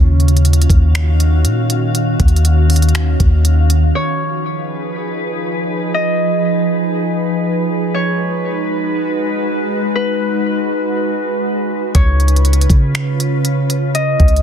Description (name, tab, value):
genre	hip hop, atmospheric cloud-rap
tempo	120 BPM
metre	4/4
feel	half-time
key	unclear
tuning	A4 = 439 Hz
part	glassy FM pad	sustained chords	0.0-14.4 s	Db3 to F5	-18 LUFS	right 1 dB	ensemble chorus, built-in reverb, sidechain pumping
part	soft 808-style bass	bass	0.0-3.9, 11.9-14.4 s	Db2 to Db3	-12 LUFS	equal	none
part	smooth R&B drum kit	drums	0.2-3.8, 11.9-14.4 s	finger snaps, hi-hat, kick drum	-15 LUFS	equal	soft clipping on snare
part	Celtic harp	melody	4.0-14.4 s	Cb5 to Eb5	-22 LUFS	left 2 dB	low-pass filter, ping-pong delay
room	little or no reverb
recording	dense, heavily limited modern master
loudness	-13 LUFS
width	side -8 dB against mid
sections	0.0-3.9 A section; 3.9-14.4 B section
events	none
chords	0.0 Ebm9; 3.9 Fm7b5; 7.9 Abm7; 11.9 Db7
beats	0.45 0.95 1.45 | 1.95 2.45 2.95 3.45 | 3.95 4.45 4.95 5.45 | 5.95 6.45 6.95 7.45 | 7.95 8.45 8.95 9.45 | 9.95 10.45 10.95 11.45 | 11.95 12.45 12.95 13.45 | 13.95